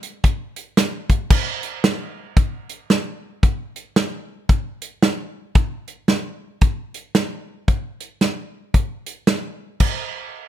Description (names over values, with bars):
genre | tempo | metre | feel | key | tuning
country | 113 BPM | 4/4 | swing 61% on 8ths | none | none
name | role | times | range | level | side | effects
natural country drum kit | drums | 0.0-10.0 s | crash cymbal, hi-hat, kick drum, snare drum | -17 LUFS | equal | none
room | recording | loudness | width
little or no reverb | close, detailed microphones | -19 LUFS | side -12 dB against mid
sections
0.0-1.3 A section; 1.3-9.8 B section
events
none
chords
none